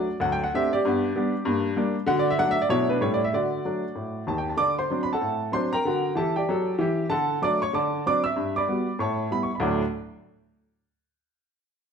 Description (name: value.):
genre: jazz, stride piano.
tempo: 191 BPM.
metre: 4/4.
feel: swing 60% on 8ths.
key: D major.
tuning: A4 = 440 Hz.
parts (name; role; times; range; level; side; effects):
clear upright piano; solo; 0.0-9.8 s; D2 to E6; -23 LUFS; equal; none.
room: wet studio reverb, RT60 1.0 s.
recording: heard from further back in the room.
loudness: -22 LUFS.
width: side -6 dB against mid.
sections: 0.0-4.6 A section; 4.6-9.6 B section; 9.6-10.9 C section.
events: none.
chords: 0.2 D7; 0.8 G; 1.4 Gm; 2.1 D; 2.7 Bm7; 3.0 A7; 3.3 D; 4.6 D7; 5.8 Gm/D; 7.1 D; 7.7 D7; 8.4 Gmaj7; 9.0 A9; 9.6 D.